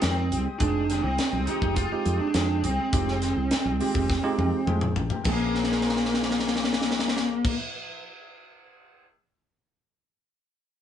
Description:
electric jazz fusion; 103 BPM; 4/4; straight; Bb dorian; A4 = 445 Hz
bluesy overdriven lead guitar; melody; 0.0-7.5 s; Bb3 to F4; -27 LUFS; equal; distortion
bell-like tine electric piano; accompaniment; 0.0-7.5 s; Ab3 to Bb4; -32 LUFS; right 4 dB
sweeping resonant pad; sustained chords; 0.0-7.5 s; Ab3 to Eb6; -37 LUFS; left 1 dB; chorus
mellow electric guitar; stabs; 0.0-8.1 s; Eb3 to Ab4; -38 LUFS; left 5 dB
woody fretless electric bass; bass; 0.0-7.5 s; F1 to F2; -29 LUFS; equal
tight funk drum kit; drums; 0.0-9.1 s; crash cymbal, hi-hat, kick drum, snare drum, toms; -28 LUFS; equal
moderate studio reverb, RT60 0.6 s; band playing live in one room, nothing above 10.7 kHz; -23 LUFS; side -9 dB against mid
0.0-5.3 A section; 5.3-7.6 B section
drum fill 4.1-5.3, 5.6-7.4
0.0 Fm9; 5.3 Bbm9

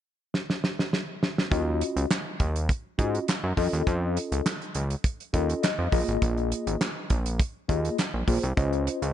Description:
early-eighties boogie funk; 102 BPM; 4/4; straight; Eb dorian; A4 = 439 Hz
damped 70s drum kit; drums; 0.3-9.1 s; handclaps, hi-hat, kick drum, snare drum; -27 LUFS; right 1 dB; gated reverb
mellow tine electric piano; accompaniment; 1.5-9.1 s; Bb3 to Eb5; -29 LUFS; left 4 dB; medium stereo tremolo
fat analog bass; bass; 1.5-9.1 s; Ab1 to Ab2; -27 LUFS; right 1 dB
small room ambience; nothing above 10.9 kHz; -25 LUFS; side -11 dB against mid
0.0-1.5 A section; 1.5-9.1 B section
drum fill 0.3-1.5; tine electric piano fill 5.3-6.2
0.0 N.C.; 1.5 Ebm9; 3.6 Faug7; 5.9 Bb7sus4; 8.6 Dbmaj9

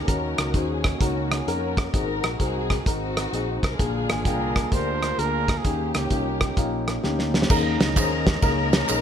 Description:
uptempo gospel; 129 BPM; 4/4; swing 66% on 8ths; A4 = 440 Hz
dark studio string section; melody; 0.0-9.0 s; Bb3 to Bb4; -30 LUFS; left 4 dB
tonewheel organ; sustained chords; 0.0-9.0 s; D3 to Bb5; -32 LUFS; right 6 dB; slow rotary speaker
warm baby grand piano; accompaniment; 0.1-9.0 s; Ab2 to G5; -28 LUFS; left 5 dB
fingered electric bass; bass; 0.1-9.0 s; Ab1 to F2; -29 LUFS; equal
warm soul drum kit; drums; 0.1-9.0 s; crash cymbal, hi-hat, kick drum, ride cymbal, rim click, snare drum; -23 LUFS; right 1 dB
breathy trumpet; melody; 4.1-6.8 s; G4 to C5; -29 LUFS; right 6 dB
tambourine and handclaps; percussion; 7.5-9.0 s; -32 LUFS; right 6 dB
light reverb; -21 LUFS; side -8 dB against mid
0.0-7.5 A section; 7.5-9.0 B section
drum fill 7.0-7.5
0.1 Ebm7; 1.9 Ab7; 3.8 Bb7; 5.6 Eb7; 7.5 Eb7sus4

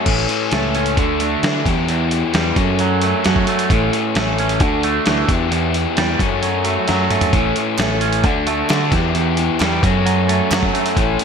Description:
indie rock; 132 BPM; 4/4; straight; A4 = 440 Hz
raw garage guitar; riff; 0.0-11.2 s; E3 to G4; -20 LUFS; left 7 dB; overdrive
twangy electric guitar; riff; 0.0-11.2 s; E2 to C#4; -20 LUFS; right 8 dB; wide subtle chorus, ping-pong delay
fingered electric bass; bass; 0.1-11.2 s; A1 to D3; -22 LUFS; equal
dusty soul sampler-style drum kit; drums; 0.1-11.2 s; crash cymbal, hi-hat, kick drum, snare drum, toms; -20 LUFS; equal
group handclap; percussion; 7.8-10.6 s; -32 LUFS; right 5 dB
light reverb; bright 1980s-style digital production; -15 LUFS; side -6 dB against mid
0.1-11.2 A section
drum fill 6.9-7.3
0.1 A; 1.0 Dadd9; 1.7 Em; 2.6 F#m; 3.7 A; 4.6 Dadd9; 5.3 Em; 6.2 F#m; 7.3 A; 8.2 D; 8.9 Em; 9.8 F#m

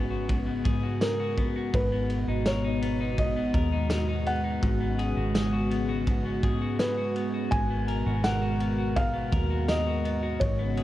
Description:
dream pop; 83 BPM; 4/4; straight; G# minor; A4 = 441 Hz
felt-muted upright piano; melody; 0.0-10.8 s; A#4 to G#5; -32 LUFS; equal; digital delay
warm analog pad; sustained chords; 0.0-10.8 s; B2 to A#4; -31 LUFS; equal; chorus
electric guitar at the edge of break-up; arpeggios; 0.0-10.8 s; G#2 to A#4; -33 LUFS; left 3 dB; wide subtle chorus, digital delay
vintage muted fingered electric bass; bass; 0.0-10.8 s; G#1 to G#2; -30 LUFS; equal
loose indie drum kit; drums; 0.3-10.8 s; kick drum, ride cymbal, snare drum, tambourine; -31 LUFS; equal
small room reverb; dark, warm production; -24 LUFS; side -14 dB against mid
0.0-10.8 A section
0.0 C#7sus4/G#; 1.7 G#m9; 4.6 C#7sus4/G#; 7.5 G#m9

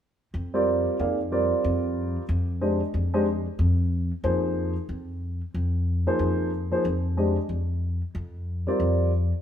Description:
jazz; 184 BPM; 4/4; swing 62% on 8ths; Bb mixolydian; A4 = 440 Hz
upright bass; bass; 0.3-9.3 s; F2; -26 LUFS; left 1 dB
warm upright piano; accompaniment; 0.5-9.1 s; F3 to F5; -25 LUFS; equal
wet stone room reverb, RT60 1.2 s; band playing live in one room; -23 LUFS; side -9 dB against mid
0.0-9.4 A section
break 9.1-9.4
0.0 Bb13

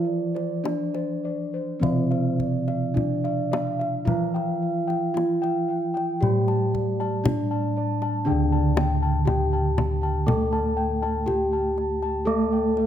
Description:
Javanese gamelan; 50-60 BPM; 4/4; straight; D slendro; A4 = 440 Hz
gamelan-type bronze metallophone; melody; 0.0-12.9 s; C4-25c to A4; -27 LUFS; left 1 dB
gamelan-type bronze metallophone; accompaniment; 0.0-12.9 s; C3-25c to A3; -28 LUFS; right 2 dB
gamelan-type bossed gongs; arpeggios; 0.0-12.9 s; C5-25c to A5; -32 LUFS; left 7 dB
gamelan-type bronze metallophone; arpeggios; 0.0-12.9 s; C5-25c to A5; -33 LUFS; right 9 dB; slapback echo
gamelan-type bossed gongs; bass; 0.0-12.9 s; D2 to A4; -27 LUFS; left 1 dB
kendang; percussion; 0.4-12.9 s; -27 LUFS; left 2 dB
light reverb; close, detailed microphones; -22 LUFS; side -10 dB against mid
0.0-8.3 A section; 8.3-12.9 B section

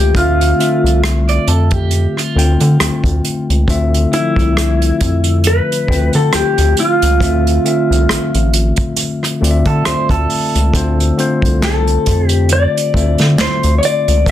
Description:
R&B, neo-soul; 68 BPM; 4/4; swing 56% on 16ths; D minor; A4 = 442 Hz
mellow electric guitar; melody; 0.0-14.3 s; E4 to D5; -16 LUFS; left 1 dB
tine electric piano; accompaniment; 0.0-14.3 s; D3 to G5; -18 LUFS; left 3 dB; overdrive
rubbery square bass; bass; 0.0-14.3 s; A1 to D3; -14 LUFS; equal
unplugged drum kit; drums; 0.1-14.3 s; handclaps, hi-hat, kick drum, rim click, snare drum; -18 LUFS; right 1 dB; soft clipping on snare
electric guitar through a small old amp; second line; 1.3-3.5, 9.7-11.4 s; F4 to D5; -22 LUFS; right 7 dB
light reverb; dense, heavily limited modern master; -11 LUFS; side -11 dB against mid
0.0-14.3 A section
0.0 Dm9

